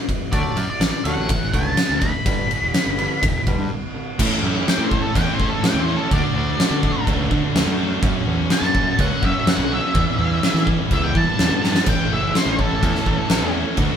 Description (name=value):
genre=quiet-loud alternative rock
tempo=125 BPM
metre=4/4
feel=straight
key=A mixolydian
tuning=A4 = 441 Hz
part: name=twangy electric guitar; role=arpeggios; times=0.0-4.2 s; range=G2 to A3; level=-29 LUFS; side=equal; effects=none
part: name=oversized low-tuned drum kit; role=drums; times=0.1-13.9 s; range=crash cymbal, kick drum, ride cymbal, snare drum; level=-20 LUFS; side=equal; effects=none
part: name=octave-fuzz lead guitar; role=melody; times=0.3-13.5 s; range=A4 to B5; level=-24 LUFS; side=equal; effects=distortion
part: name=fuzz picked electric bass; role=bass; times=0.3-13.9 s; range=E1 to E3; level=-24 LUFS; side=equal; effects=overdrive
part: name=overdriven semi-hollow guitar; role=riff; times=4.2-14.0 s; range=A2 to F#4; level=-26 LUFS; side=right 8 dB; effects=none
part: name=scooped high-gain guitar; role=riff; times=4.2-14.0 s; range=F#2 to F#4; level=-28 LUFS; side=left 8 dB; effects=distortion
part: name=string machine, full ensemble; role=sustained chords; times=11.9-14.0 s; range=A4 to D6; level=-35 LUFS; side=left 2 dB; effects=none
room=light reverb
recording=band playing live in one room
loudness=-17 LUFS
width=side -8 dB against mid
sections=0.0-4.2 A section; 4.2-14.0 B section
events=break 3.7-4.2; lead electric guitar solo 4.2-14.0; drum fill 11.6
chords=0.3 D; 2.3 G; 4.2 A; 6.1 D; 8.0 F#; 10.0 Em; 11.9 A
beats=| 0.33 0.81 1.29 1.78 | 2.26 2.74 3.23 3.71 | 4.19 4.67 5.15 5.63 | 6.12 6.60 7.08 7.56 | 8.04 8.52 9.00 9.48 | 9.96 10.44 10.92 11.40 | 11.88 12.35 12.83 13.31 | 13.79